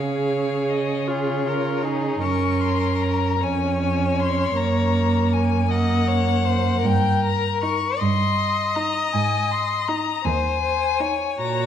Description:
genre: classical, slow romantic movement for string quartet.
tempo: 52 BPM (dotted quarters).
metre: 6/8.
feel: uneven beats, rubato.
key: Db major.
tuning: A4 = 440 Hz.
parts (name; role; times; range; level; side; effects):
clear violin; melody; 0.0-11.7 s; Db5 to Db6; -25 LUFS; left 8 dB; none.
rich violin; second line; 0.0-11.7 s; Ab4 to Eb5; -27 LUFS; left 2 dB; none.
rich viola; accompaniment; 0.0-11.7 s; Bb3 to Ab4; -25 LUFS; right 2 dB; none.
rich cello; bass; 0.0-11.7 s; Eb2 to Db3; -24 LUFS; right 3 dB; none.
room: wet recital hall reverb, RT60 1.4 s.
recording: dark, warm production.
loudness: -19 LUFS.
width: side -9 dB against mid.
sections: 0.0-11.7 A section.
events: none.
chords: 0.0 Db; 2.2 Gb; 3.4 Db/F; 4.6 Gb; 6.8 Eb/G; 9.1 Ab5.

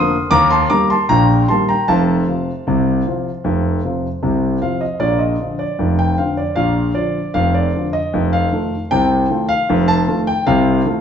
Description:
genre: ragtime piano.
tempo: 77 BPM.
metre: 2/4.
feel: straight.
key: Bb major.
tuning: A4 = 440 Hz.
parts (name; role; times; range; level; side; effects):
warm concert grand piano; solo; 0.0-11.0 s; F1 to Eb6; -14 LUFS; equal; none.
room: wet large studio reverb, RT60 1.3 s.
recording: band playing live in one room, nothing above 7.8 kHz.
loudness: -14 LUFS.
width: side -8 dB against mid.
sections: 0.0-5.0 A section; 5.0-11.0 B section.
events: none.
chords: 0.3 Eb; 1.9 F; 5.0 Bb; 8.1 F7.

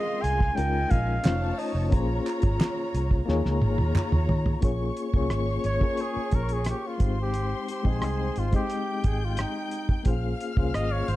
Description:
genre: lush 1970s-style soul.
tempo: 88 BPM.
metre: 4/4.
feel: straight.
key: Bb dorian.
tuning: A4 = 440 Hz.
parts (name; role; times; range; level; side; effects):
warm flugelhorn; melody; 0.0-11.2 s; Eb4 to Ab5; -31 LUFS; right 1 dB; none.
warm studio string section; second line; 0.0-11.2 s; Eb4 to G6; -34 LUFS; equal; none.
mellow reed electric piano; accompaniment; 0.0-11.2 s; Ab3 to G5; -31 LUFS; left 4 dB; fast tremolo.
vintage muted fingered electric bass; bass; 0.2-11.2 s; F1 to Eb3; -27 LUFS; equal; none.
cloth-damped thuddy drum kit; drums; 0.2-11.2 s; hi-hat, kick drum, rim click, snare drum, toms; -25 LUFS; equal; none.
group handclap; percussion; 1.2-4.1 s; none; -43 LUFS; right 6 dB; none.
room: small room ambience.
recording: dark, warm production.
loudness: -24 LUFS.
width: side -16 dB against mid.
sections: 0.0-4.6 A section; 4.6-11.2 B section.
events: drum fill 3.3-4.6; flugelhorn solo 4.6-11.2.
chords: 0.0 Bbm9; 0.6 Db69; 1.2 F7b13; 1.9 Bbm9; 3.3 Eb9sus4; 4.6 Bbm7; 7.0 Abmaj7; 10.1 Bbm9.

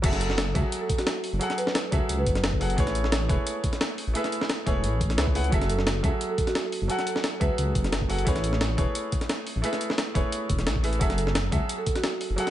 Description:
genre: liquid drum and bass.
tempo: 175 BPM.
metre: 4/4.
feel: straight.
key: F# minor.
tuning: A4 = 443 Hz.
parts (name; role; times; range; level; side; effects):
warm concert grand piano; accompaniment; 0.0-12.5 s; F#3 to G#5; -30 LUFS; right 1 dB; digital delay.
dark detuned saw bass; bass; 0.0-12.4 s; E1 to C#2; -27 LUFS; equal; none.
breakbeat sampler-style drum kit; drums; 0.0-12.5 s; crash cymbal, hi-hat, snare drum; -30 LUFS; equal; small room ambience.
electronic kick drum; drums; 0.0-11.9 s; none; -27 LUFS; equal; small room ambience.
marimba with medium mallets; melody; 0.2-2.5, 5.7-7.9, 11.2-12.2 s; F#4 to B4; -33 LUFS; right 2 dB; dub echo.
room: digital ambience.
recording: nothing above 10.5 kHz.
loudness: -23 LUFS.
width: side -12 dB against mid.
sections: 0.0-12.5 A section.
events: drop 0.0-12.5.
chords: 0.0 F#m9; 2.8 Amaj9; 5.5 F#m9; 8.3 Amaj9; 11.0 F#m9.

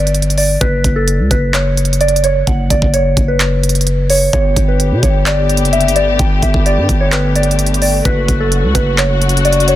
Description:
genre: hip hop, trap.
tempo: 129 BPM.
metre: 4/4.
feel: half-time.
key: F# phrygian.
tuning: A4 = 440 Hz.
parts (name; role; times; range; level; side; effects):
soft synth bell; melody; 0.0-9.8 s; A4 to G5; -16 LUFS; equal; chorus, phaser, low-pass filter.
growling 808-style bass; bass; 0.0-9.8 s; F#1 to B2; -15 LUFS; equal; none.
trap drum kit; drums; 0.1-9.8 s; handclaps, hi-hat, kick drum; -16 LUFS; equal; overdrive.
dark symphonic string section; sustained chords; 4.3-9.8 s; C#3 to G4; -19 LUFS; left 1 dB; none.
room: digital ambience.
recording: dense, heavily limited modern master.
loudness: -11 LUFS.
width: side -13 dB against mid.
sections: 0.0-9.8 A section.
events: none.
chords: 0.0 G5; 0.6 F#5; 4.3 Gadd9; 8.1 F#m.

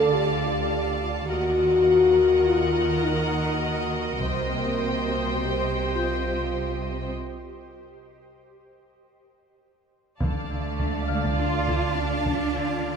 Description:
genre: cinematic, suspense film score.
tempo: 102 BPM.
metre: 5/4.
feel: straight.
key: D phrygian.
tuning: A4 = 440 Hz.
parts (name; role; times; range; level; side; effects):
rich studio violin section; melody; 0.0-13.0 s; Gb5 to A5; -36 LUFS; left 2 dB; none.
rich studio violin section; second line; 0.0-13.0 s; Eb5 to F5; -35 LUFS; left 2 dB; none.
rich studio viola section; accompaniment; 0.0-13.0 s; Bb4 to D5; -32 LUFS; right 1 dB; none.
mellow French horn section; sustained chords; 0.0-7.1 s; Bb3 to A4; -23 LUFS; left 2 dB; none.
shimmering ambient pad; sustained chords; 0.0-13.0 s; F4 to F5; -36 LUFS; equal; chorus, built-in reverb.
warm studio cello section; bass; 0.0-13.0 s; C3 to F4; -32 LUFS; right 3 dB; none.
warm studio double bass section; bass; 0.0-13.0 s; C2 to Eb2; -31 LUFS; right 4 dB; none.
concert harp; texture; 0.7-13.0 s; F5 to C7; -38 LUFS; left 3 dB; none.
solo taiko drums; drums; 4.2-5.3, 10.2-12.8 s; none; -32 LUFS; equal; none.
Celtic harp; riff; 10.2-13.0 s; D3 to D4; -31 LUFS; left 5 dB; none.
room: wet recital hall reverb, RT60 1.9 s.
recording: minimal, uncompressed stereo recording.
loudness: -22 LUFS.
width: side -6 dB against mid.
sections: 0.0-10.2 A section; 10.2-13.0 A section.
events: break 7.2-10.2.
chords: 0.0 Dm; 1.3 Ebm; 4.2 Cm7; 7.2 N.C.; 10.2 Dm.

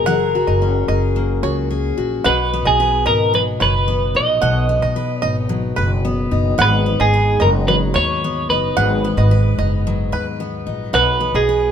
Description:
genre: pop.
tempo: 110 BPM.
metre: 4/4.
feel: straight.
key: unclear.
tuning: A4 = 439 Hz.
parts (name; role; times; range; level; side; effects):
twelve-string electric guitar; melody; 0.0-11.7 s; G#4 to D#5; -18 LUFS; right 1 dB; none.
picked steel-string acoustic guitar; accompaniment; 0.0-11.7 s; G#2 to B4; -22 LUFS; left 4 dB; none.
upright bass; bass; 0.0-11.7 s; F#1 to D#2; -20 LUFS; right 1 dB; none.
bluegrass banjo; arpeggios; 0.1-11.6 s; B4 to F#5; -24 LUFS; right 5 dB; none.
room: light reverb.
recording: minimal, uncompressed stereo recording.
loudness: -15 LUFS.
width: side -8 dB against mid.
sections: 0.0-2.2 A section; 2.2-11.7 B section.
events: none.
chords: 0.1 F#add9; 2.2 G#m7.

